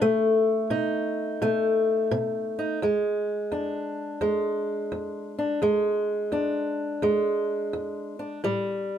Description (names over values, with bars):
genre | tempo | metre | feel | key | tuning
blues | 86 BPM | 4/4 | swing 66% on 8ths | E mixolydian | A4 = 441 Hz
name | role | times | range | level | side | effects
fingerpicked old ladder-braced acoustic guitar | solo | 0.0-9.0 s | E2 to D#4 | -24 LUFS | equal | none
room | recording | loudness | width
little or no reverb | none | -24 LUFS | side -9 dB against mid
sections
0.0-2.8 A section; 2.8-9.0 B section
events
none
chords
0.0 B7; 2.8 E7; 8.4 A7(no3)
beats
| 0.02 0.72 1.42 2.11 | 2.81 3.51 4.21 4.92 | 5.62 6.32 7.03 7.73 | 8.44